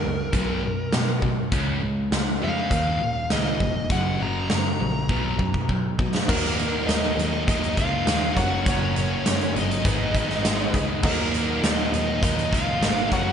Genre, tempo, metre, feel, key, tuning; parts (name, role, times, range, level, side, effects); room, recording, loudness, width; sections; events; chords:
classic rock; 101 BPM; 4/4; straight; Eb minor; A4 = 440 Hz
smooth overdriven lead guitar; melody; 0.0-13.3 s; Bb4 to Bb5; -29 LUFS; left 1 dB; slapback echo
crunchy overdriven guitar; riff; 0.0-13.3 s; Eb2 to Gb4; -29 LUFS; right 7 dB
sludgy distorted guitar; riff; 0.0-13.3 s; Eb2 to Gb4; -30 LUFS; left 9 dB; overdrive
clear double bass; bass; 0.0-13.3 s; F1 to B2; -29 LUFS; equal
huge arena drum kit; drums; 0.3-13.3 s; crash cymbal, hi-hat, kick drum, snare drum; -25 LUFS; equal
octave-fuzz lead guitar; second line; 6.3-13.3 s; Bb3 to Gb4; -33 LUFS; right 2 dB
tack piano; accompaniment; 6.3-13.3 s; Gb4 to Eb5; -35 LUFS; left 3 dB; slapback echo
moderate lush hall reverb, RT60 2.2 s; big arena sound, nothing above 10.5 kHz; -21 LUFS; side -8 dB against mid
0.0-6.3 A section; 6.3-13.3 B section
drum fill 5.1-6.3
0.3 B5; 1.5 Db; 2.7 Ebsus2; 3.9 Gb; 5.1 B5; 6.3 Ebm; 8.4 Gb; 9.9 Abm; 11.0 Ebm